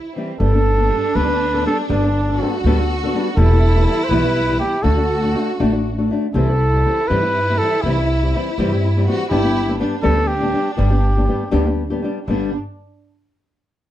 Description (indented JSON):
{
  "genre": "mexican folk, mariachi",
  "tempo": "81 BPM (dotted quarters)",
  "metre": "6/8",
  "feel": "rubato",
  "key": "G major",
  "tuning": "A4 = 440 Hz",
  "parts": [
    { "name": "rich studio violin section", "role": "second line", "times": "0.0-12.5 s", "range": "C4 to F#4", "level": "-24 LUFS", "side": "right 1 dB", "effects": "none" },
    { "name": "flamenco guitar", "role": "accompaniment", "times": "0.2-12.5 s", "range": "E2 to A4", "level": "-21 LUFS", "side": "left 2 dB", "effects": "none" },
    { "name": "mellow trumpet", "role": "melody", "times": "0.4-11.7 s", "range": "D4 to C5", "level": "-20 LUFS", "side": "right 1 dB", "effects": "plate reverb" },
    { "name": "upright bass", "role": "bass", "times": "0.4-12.5 s", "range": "E1 to G2", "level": "-18 LUFS", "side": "equal", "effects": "none" }
  ],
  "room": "light reverb",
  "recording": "dark, warm production",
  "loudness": "-15 LUFS",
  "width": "side -12 dB against mid",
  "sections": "0.4-12.3 A section; 12.3-13.8 B section",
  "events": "none",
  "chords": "0.4 Gadd9; 3.4 Em; 4.8 D; 6.3 C; 9.3 G"
}